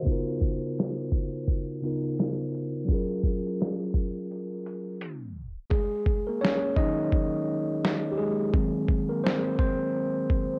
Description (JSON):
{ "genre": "lo-fi hip hop", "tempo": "85 BPM", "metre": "4/4", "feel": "swing 60% on 16ths", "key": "Eb dorian", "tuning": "A4 = 440 Hz", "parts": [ { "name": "tine electric piano", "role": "accompaniment", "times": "0.0-10.6 s", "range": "Db3 to Eb5", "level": "-30 LUFS", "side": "equal", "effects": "cassette tape" }, { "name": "lo-fi sampler-style drum kit", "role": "drums", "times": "0.1-10.5 s", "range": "hi-hat, kick drum, snare drum", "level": "-29 LUFS", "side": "equal", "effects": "cassette tape" } ], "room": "light reverb", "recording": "home recording on cassette, low-pass filter, tape stop", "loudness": "-28 LUFS", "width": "mono", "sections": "0.0-5.7 A section; 5.7-10.6 B section", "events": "filter sweep 0.0-5.7; drum fill 4.3-5.7; tape stop 5.0-5.7; hi-hats muted 5.7-10.6; tine electric piano solo 5.7-10.6", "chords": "0.1 Db13; 2.9 Gbmaj7; 5.7 Ebm7; 8.5 Ab9/Eb" }